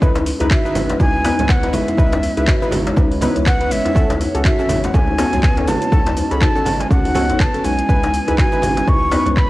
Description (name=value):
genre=afro house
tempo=122 BPM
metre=4/4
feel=swing 58% on 16ths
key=C# minor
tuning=A4 = 440 Hz
part: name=dark analog pad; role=sustained chords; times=0.0-9.5 s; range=G#3 to D#5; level=-27 LUFS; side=right 1 dB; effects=none
part: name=kalimba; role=arpeggios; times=0.0-9.5 s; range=G#3 to C#5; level=-24 LUFS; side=left 1 dB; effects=vintage 12-bit sampler grit, sidechain pumping, cassette tape, tape echo
part: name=warm analog keys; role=stabs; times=0.0-9.3 s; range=C#4 to B4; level=-24 LUFS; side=equal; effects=chorus, sidechain pumping, cassette tape, tape echo
part: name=round analog bass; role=bass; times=0.0-9.5 s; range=G#1 to C#2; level=-24 LUFS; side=equal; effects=sidechain pumping
part: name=afro-pop drum kit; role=drums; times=0.0-9.5 s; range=handclaps, hi-hat, shaker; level=-26 LUFS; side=equal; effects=small room ambience, cassette tape
part: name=electronic kick drum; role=drums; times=0.0-9.5 s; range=none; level=-16 LUFS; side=equal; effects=overdrive, small room ambience, cassette tape
part: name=congas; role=percussion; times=0.0-9.5 s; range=none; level=-26 LUFS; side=right 2 dB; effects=none
part: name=djembe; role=percussion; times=0.2-9.2 s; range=none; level=-25 LUFS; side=left 2 dB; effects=none
part: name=breathy jazz flute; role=melody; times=0.5-9.5 s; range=E5 to C#6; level=-22 LUFS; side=equal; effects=cassette tape, tape echo
room=light reverb, studio reverb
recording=home recording on cassette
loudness=-14 LUFS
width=side -18 dB against mid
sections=0.0-9.5 A section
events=none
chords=0.0 C#m7; 4.0 F#m; 7.9 C#m7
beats=| 0.02 0.51 1.00 1.50 | 1.99 2.48 2.97 3.46 | 3.96 4.45 4.94 5.43 | 5.92 6.42 6.91 7.40 | 7.89 8.38 8.87 9.37